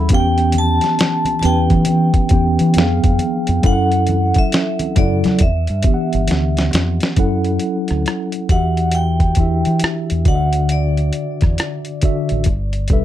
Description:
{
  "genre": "R&B, neo-soul",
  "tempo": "68 BPM",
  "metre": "4/4",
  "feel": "swing 63% on 16ths",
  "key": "E dorian",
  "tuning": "A4 = 440 Hz",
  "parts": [
    { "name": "mellow tine electric piano", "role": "accompaniment", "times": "0.0-13.0 s", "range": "C#3 to G5", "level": "-19 LUFS", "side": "equal", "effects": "medium stereo tremolo" },
    { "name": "deep dub fingered electric bass", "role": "bass", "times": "0.0-13.0 s", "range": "G1 to F#3", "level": "-18 LUFS", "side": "equal", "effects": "none" },
    { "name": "vibraphone with medium hard mallets", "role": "melody", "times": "0.1-13.0 s", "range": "D5 to A5", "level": "-22 LUFS", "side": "equal", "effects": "none" },
    { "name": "dusty soul sampler-style drum kit", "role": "drums", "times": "0.1-13.0 s", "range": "hi-hat, kick drum, rim click, snare drum", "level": "-17 LUFS", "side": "equal", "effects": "none" },
    { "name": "congas", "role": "percussion", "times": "0.1-7.0 s", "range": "none", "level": "-28 LUFS", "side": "right 2 dB", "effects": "none" }
  ],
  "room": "light reverb",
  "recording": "dark, warm production",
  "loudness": "-14 LUFS",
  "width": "side -12 dB against mid",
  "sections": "0.0-7.2 A section; 7.2-13.0 B section",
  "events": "drum fill 6.3-7.2",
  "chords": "0.1 Em6; 2.8 Fdim7; 3.6 F#m7; 5.4 Em9; 7.2 F#m7; 8.5 Em9; 10.3 Dadd9; 12.5 G69"
}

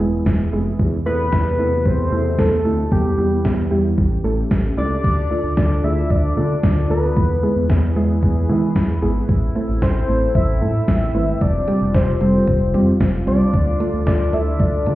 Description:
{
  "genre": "synth-pop",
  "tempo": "113 BPM",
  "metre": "4/4",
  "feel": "straight",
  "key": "A minor",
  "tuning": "A4 = 440 Hz",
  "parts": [
    { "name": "soft round pluck", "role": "accompaniment", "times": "0.0-14.9 s", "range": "G3 to B4", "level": "-23 LUFS", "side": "right 2 dB", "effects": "chorus" },
    { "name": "sweeping resonant pad", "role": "sustained chords", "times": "0.0-14.9 s", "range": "B2 to B4", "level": "-26 LUFS", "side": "left 1 dB", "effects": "chorus, phaser" },
    { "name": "smooth gliding synth bass", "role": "bass", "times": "0.0-14.9 s", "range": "E1 to E3", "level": "-20 LUFS", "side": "equal", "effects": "none" },
    { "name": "gated 80s digital drum machine", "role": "drums", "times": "0.3-14.9 s", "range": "crash cymbal, hi-hat, kick drum, snare drum", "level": "-19 LUFS", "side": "equal", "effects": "gated reverb, gated reverb snare, overdrive" },
    { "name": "fat analog lead", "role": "melody", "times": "1.1-14.9 s", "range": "G4 to E5", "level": "-22 LUFS", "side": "left 1 dB", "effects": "chorus, digital delay" }
  ],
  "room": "light reverb",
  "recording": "heard muffled through a wall, stone room reverb, EQ",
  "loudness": "-16 LUFS",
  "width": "side -16 dB against mid",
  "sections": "0.0-5.0 A section; 5.0-14.9 B section",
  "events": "none",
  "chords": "0.0 E; 0.8 Amadd9/E; 2.9 Em; 4.0 A7; 5.0 Dm; 7.2 E; 9.3 Am; 11.4 Fsus2; 13.5 Dm"
}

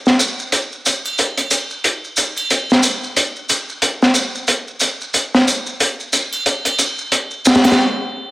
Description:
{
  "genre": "trip hop",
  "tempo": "91 BPM",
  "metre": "4/4",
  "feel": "swing 59% on 16ths",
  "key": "none",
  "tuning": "none",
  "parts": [
    { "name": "crunchy breakbeat drum kit", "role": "drums", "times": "0.1-7.8 s", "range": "hi-hat, snare drum", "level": "-15 LUFS", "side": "equal", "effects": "high-pass filter on hats, cassette tape, high-pass filter on snare, high-pass filter on room" },
    { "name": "maracas and triangle", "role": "percussion", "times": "0.1-7.8 s", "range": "none", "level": "-21 LUFS", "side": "right 1 dB", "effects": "none" }
  ],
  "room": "light reverb, small room ambience",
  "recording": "home recording on cassette",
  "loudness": "-14 LUFS",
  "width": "side -20 dB against mid",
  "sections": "0.0-8.3 A section",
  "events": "stop 7.8-8.3",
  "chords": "none"
}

